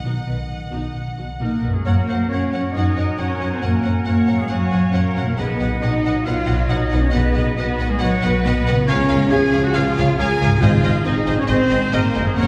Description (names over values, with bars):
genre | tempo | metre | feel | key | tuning
cinematic, heroic adventure film score | 137 BPM | 4/4 | straight | unclear | A4 = 435 Hz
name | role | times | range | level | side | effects
rich symphonic violin section | melody | 0.0-12.5 s | Eb5 to F#5 | -33 LUFS | equal | none
warm symphonic violin section | second line | 0.0-12.5 s | Ab4 to D#5 | -36 LUFS | equal | none
rich symphonic viola section | accompaniment | 0.0-12.5 s | F#3 to Db5 | -33 LUFS | equal | none
dark French horn section | sustained chords | 0.0-12.5 s | D#3 to Ab4 | -26 LUFS | equal | none
concert harp | arpeggios | 0.0-12.5 s | Gb2 to D#5 | -28 LUFS | equal | none
rich symphonic double bass section | bass | 0.0-12.5 s | Gb1 to Gb2 | -24 LUFS | equal | none
warm symphonic cello section | bass | 0.0-12.5 s | B2 to Ab4 | -27 LUFS | equal | none
warm oboe | second line | 1.4-12.5 s | Gb4 to Ab5 | -33 LUFS | equal | none
mellow trumpet section | stabs | 1.4-12.5 s | Gb4 to Ab5 | -32 LUFS | equal | none
bright clarinet | second line | 1.9-12.5 s | Bb4 to Gb5 | -34 LUFS | equal | none
bright silver concert flute | second line | 1.9-12.5 s | D#5 to Ab5 | -35 LUFS | equal | none
mellow trombone section | sustained chords | 1.9-12.5 s | Db3 to D#4 | -32 LUFS | equal | none
timpani | percussion | 10.6-11.2 s | Ab2 | -27 LUFS | equal | none
room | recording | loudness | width
wet scoring stage reverb, RT60 1.9 s | heard from further back in the room | -19 LUFS | mono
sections
0.0-1.9 A section; 1.9-12.5 B section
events
none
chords
0.0 B; 1.9 Gb; 5.4 B; 8.9 Db; 10.6 Ab